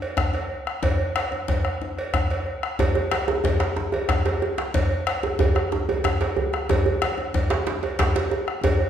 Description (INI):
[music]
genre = west african traditional, West African drum ensemble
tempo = 123 BPM (dotted quarters)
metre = 12/8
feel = straight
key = none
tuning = none
[part]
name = cowbell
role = percussion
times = 0.0-8.8 s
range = none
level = -29 LUFS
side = right 2 dB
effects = none
[part]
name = bombo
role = percussion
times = 0.2-8.9 s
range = none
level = -25 LUFS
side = left 1 dB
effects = none
[part]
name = djembe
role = percussion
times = 0.2-8.8 s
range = none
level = -28 LUFS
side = left 2 dB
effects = none
[part]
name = djembe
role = percussion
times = 2.8-8.8 s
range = none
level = -24 LUFS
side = right 3 dB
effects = none
[sound]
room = wet recital hall reverb, RT60 1.4 s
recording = recorded in a church or concert hall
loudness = -21 LUFS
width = side -9 dB against mid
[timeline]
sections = 0.0-8.9 A section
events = drum fill 8.6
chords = none